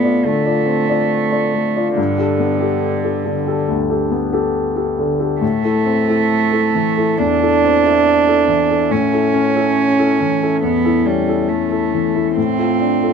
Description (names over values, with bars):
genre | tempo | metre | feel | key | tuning
neoclassical piano and strings | 70 BPM | 4/4 | rubato | unclear | A4 = 439 Hz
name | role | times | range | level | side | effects
warm cello | second line | 0.0-13.1 s | D3 to D4 | -16 LUFS | right 5 dB | none
warm concert grand piano | accompaniment | 0.0-13.1 s | D2 to D5 | -17 LUFS | left 4 dB | none
room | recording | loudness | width
moderate studio ambience, RT60 0.5 s | none | -14 LUFS | side -6 dB against mid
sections
0.0-13.1 A section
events
none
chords
0.0 Dm7/A; 2.0 Gadd9; 5.4 Am; 8.9 A; 12.4 Dm7/A